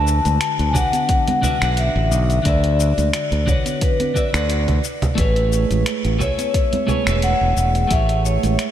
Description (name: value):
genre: sunset chillout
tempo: 88 BPM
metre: 4/4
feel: swing 54% on 16ths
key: unclear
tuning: A4 = 440 Hz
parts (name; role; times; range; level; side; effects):
- vibraphone with medium hard mallets; melody; 0.0-8.7 s; B4 to A5; -21 LUFS; left 1 dB; analog delay
- twelve-string electric guitar; accompaniment; 0.0-8.7 s; D3 to F#5; -25 LUFS; moving between left 5 dB and right 8 dB; auto-pan, analog delay
- modern bright fingered electric bass; bass; 0.0-8.6 s; E1 to D2; -18 LUFS; equal; none
- dusty soul sampler-style drum kit; drums; 0.1-8.7 s; cabasa, congas, finger snaps, hi-hat; -25 LUFS; right 1 dB; studio reverb
- congas; percussion; 0.3-8.6 s; none; -29 LUFS; right 5 dB; none
- electronic kick drum; drums; 0.8-8.1 s; none; -20 LUFS; equal; studio reverb
room: moderate lush hall reverb, RT60 2.9 s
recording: dreamy mix soaked in reverb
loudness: -16 LUFS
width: side -10 dB against mid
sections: 0.0-8.7 A section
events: none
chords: 0.0 D69; 4.8 Amaj9